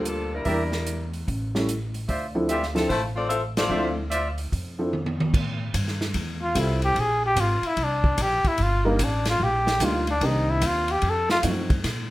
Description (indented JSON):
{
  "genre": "jazz, big band swing",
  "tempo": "148 BPM",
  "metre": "4/4",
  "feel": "swing 65% on 8ths",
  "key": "unclear",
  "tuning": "A4 = 440 Hz",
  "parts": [
    { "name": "dark baby grand piano", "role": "accompaniment", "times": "0.0-11.7 s", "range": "Eb3 to Bb4", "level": "-27 LUFS", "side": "equal", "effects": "none" },
    { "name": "upright bass", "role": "bass", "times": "0.0-12.1 s", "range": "G1 to Bb2", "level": "-28 LUFS", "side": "equal", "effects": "none" },
    { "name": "warm saxophone section", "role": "melody", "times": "0.1-4.0 s", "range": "E3 to E5", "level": "-27 LUFS", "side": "left 2 dB", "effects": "none" },
    { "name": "swinging big-band drum kit", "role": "drums", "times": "0.1-12.0 s", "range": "crash cymbal, hi-hat, kick drum, ride cymbal, snare drum, toms", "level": "-28 LUFS", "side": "equal", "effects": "none" },
    { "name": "mellow trumpet section", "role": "stabs", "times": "0.5-4.3 s", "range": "F4 to E5", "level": "-28 LUFS", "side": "equal", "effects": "none" },
    { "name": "mellow trumpet", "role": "melody", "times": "6.4-11.4 s", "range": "Bb3 to A4", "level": "-23 LUFS", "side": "left 1 dB", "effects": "none" }
  ],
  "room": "moderate studio reverb, RT60 0.5 s",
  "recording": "rough home demo mix",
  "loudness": "-22 LUFS",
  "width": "side -17 dB against mid",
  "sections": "0.0-5.3 A section; 5.3-12.1 B section",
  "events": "band accent 3.5; drum fill 4.9-5.3; trumpet solo 5.3-12.1",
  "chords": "0.5 Em7b5; 1.3 A7; 2.1 Dm9; 5.3 Fmaj9; 7.0 Bb9; 8.6 Ebmaj7; 10.2 Cm9; 11.0 F7b9"
}